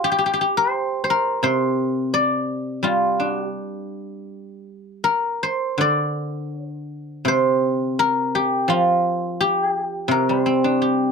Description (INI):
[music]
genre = chinese traditional, Chinese solo plucked strings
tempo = 83 BPM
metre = 4/4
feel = uneven beats, rubato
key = G yu mode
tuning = A4 = 443 Hz
[part]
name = guzheng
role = solo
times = 0.0-11.1 s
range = C3 to D5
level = -19 LUFS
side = equal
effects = none
[sound]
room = light reverb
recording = none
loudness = -18 LUFS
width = side -5 dB against mid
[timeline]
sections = 0.0-5.8 A section; 5.8-11.1 B section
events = none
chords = none